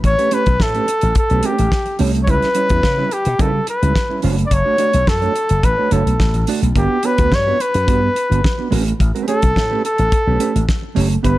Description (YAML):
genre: disco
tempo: 107 BPM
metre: 4/4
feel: straight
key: unclear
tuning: A4 = 440 Hz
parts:
  - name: mellow electric guitar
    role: accompaniment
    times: 0.0-11.4 s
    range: G3 to D5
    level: -22 LUFS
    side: right 6 dB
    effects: tremolo
  - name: slap bass with an envelope filter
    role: bass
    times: 0.0-11.3 s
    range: F#1 to C#3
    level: -18 LUFS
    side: left 1 dB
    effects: none
  - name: damped 70s drum kit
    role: drums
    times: 0.0-11.4 s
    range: hi-hat, kick drum, snare drum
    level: -19 LUFS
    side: equal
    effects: none
  - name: warm flugelhorn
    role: melody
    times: 0.1-11.4 s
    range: G4 to D5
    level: -18 LUFS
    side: left 1 dB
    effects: none
room: small room ambience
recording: none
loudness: -14 LUFS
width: side -16 dB against mid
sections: 0.0-11.4 A section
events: none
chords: 0.0 A9; 2.3 C#m7b5; 4.2 Bm9/F# (rootless); 6.8 Gmaj7; 8.7 A9